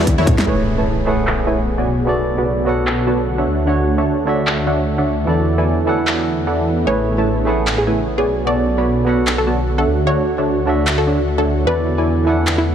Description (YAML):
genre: future bass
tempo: 150 BPM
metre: 4/4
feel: swing 56% on 16ths, half-time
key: A major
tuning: A4 = 438 Hz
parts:
  - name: wide detuned saw bass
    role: bass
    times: 0.0-12.7 s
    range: A1 to E2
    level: -20 LUFS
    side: equal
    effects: chorus, sidechain pumping
  - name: dubstep drum kit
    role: drums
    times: 0.1-12.6 s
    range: handclaps, hi-hat, snare drum, toms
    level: -23 LUFS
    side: equal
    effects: low-pass filter on hats, small room ambience, low-pass filter on snare, low-pass filter on toms
  - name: wide unison pluck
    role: melody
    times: 0.2-0.3, 6.9-12.7 s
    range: E4 to D5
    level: -24 LUFS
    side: left 1 dB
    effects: sidechain pumping, tape echo
  - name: supersaw stab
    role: riff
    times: 0.2-12.4 s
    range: D3 to B5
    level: -20 LUFS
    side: right 1 dB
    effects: sidechain pumping, low-pass filter, tape echo
  - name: barky tine electric piano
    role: accompaniment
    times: 0.5-12.7 s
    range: D3 to F#5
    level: -22 LUFS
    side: right 3 dB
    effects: sidechain pumping, tape echo
  - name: shimmering ambient pad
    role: sustained chords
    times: 1.3-12.7 s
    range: C#3 to C#5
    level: -25 LUFS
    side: left 1 dB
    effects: chorus, built-in reverb, sidechain pumping
  - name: impact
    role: sound effects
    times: 0.5-2.1 s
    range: none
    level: -25 LUFS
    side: left 1 dB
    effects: none
room: light reverb, digital ambience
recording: none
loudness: -15 LUFS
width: side -8 dB against mid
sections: 0.5-12.7 A section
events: drum fill 0.0-0.5; band accent 0.4; impact 0.5-2.1; filter sweep on drum 0.5-12.7; filter sweep on ambient pad 0.5-12.7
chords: 0.5 Amaj9; 1.9 Bm7; 3.5 Dmaj7; 5.3 E7sus4; 6.9 Amaj9; 8.3 Bm7; 9.9 Dmaj7; 11.7 E7sus4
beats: 0.07 | 0.47 0.87 1.27 1.67 | 2.07 2.47 2.87 3.27 | 3.67 4.07 4.47 4.87 | 5.27 5.67 6.07 6.47 | 6.87 7.27 7.67 8.07 | 8.47 8.87 9.27 9.67 | 10.07 10.47 10.87 11.27 | 11.67 12.07 12.47